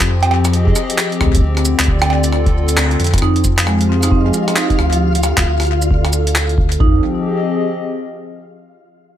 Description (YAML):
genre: IDM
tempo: 134 BPM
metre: 4/4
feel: swing 62% on 16ths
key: F dorian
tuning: A4 = 440 Hz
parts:
  - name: hollow soft pad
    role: sustained chords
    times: 0.0-8.6 s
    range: D3 to Eb5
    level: -19 LUFS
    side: left 2 dB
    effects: chorus
  - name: round analog bass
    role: bass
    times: 0.0-7.0 s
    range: D2 to F2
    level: -16 LUFS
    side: equal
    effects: none
  - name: electro analog drum machine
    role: drums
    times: 0.0-6.9 s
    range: kick drum, toms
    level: -16 LUFS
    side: equal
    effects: none
  - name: jungle sampler-style drum kit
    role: drums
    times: 0.0-6.8 s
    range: cowbell, handclaps, hi-hat, rim click, shaker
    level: -19 LUFS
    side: right 1 dB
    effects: ping-pong delay
  - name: vibraphone with medium mallets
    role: arpeggios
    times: 3.2-7.0 s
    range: F3 to Eb4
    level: -19 LUFS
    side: right 3 dB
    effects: ping-pong delay
  - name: flickering grainy texture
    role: texture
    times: 3.8-6.8 s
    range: F4 to F5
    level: -24 LUFS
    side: equal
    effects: built-in reverb
room: light reverb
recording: none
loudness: -12 LUFS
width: side -11 dB against mid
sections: 0.0-3.2 A section; 3.2-6.8 B section; 6.8-8.6 C section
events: band accent 2.8; drum fill 3.0; filter sweep on analog synth pad 3.2-6.8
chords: 0.0 Fm7; 1.4 Dm7; 3.2 Fm7; 5.0 Dm7; 6.8 Fm7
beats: 0.09 0.53 0.98 | 1.43 1.88 2.33 2.77 | 3.22 3.67 4.12 4.56 | 5.01 5.46 5.91 6.36 | 6.80 7.25 7.70 8.15